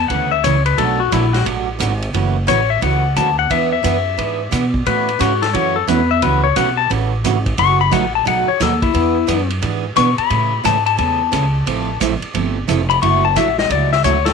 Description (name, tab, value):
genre	country, western swing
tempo	176 BPM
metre	4/4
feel	swing 64% on 8ths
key	A major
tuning	A4 = 440 Hz
part	pedal steel guitar	second line	0.0-14.3 s	E4 to C#6	-17 LUFS	left 14 dB	none
part	upright bass	bass	0.0-14.3 s	F1 to B2	-19 LUFS	right 1 dB	none
part	picked steel-string acoustic guitar	accompaniment	0.1-14.2 s	B2 to A4	-21 LUFS	right 14 dB	none
part	vintage drum kit	drums	0.1-14.3 s	hi-hat, kick drum, ride cymbal, snare drum	-24 LUFS	right 2 dB	none
room	light reverb, small room ambience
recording	1960s-style stereo with parts hard left and right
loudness	-14 LUFS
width	side -5 dB against mid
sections	0.0-14.3 A section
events	pedal steel guitar solo 0.0-14.3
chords	0.0 Amaj7; 0.8 Bm7; 2.1 F#m7; 3.5 E7; 4.9 A6; 6.2 F#m7; 7.6 B7/F#; 8.9 E7; 10.3 Amaj7; 11.7 Fmaj7; 13.0 Dadd9/F#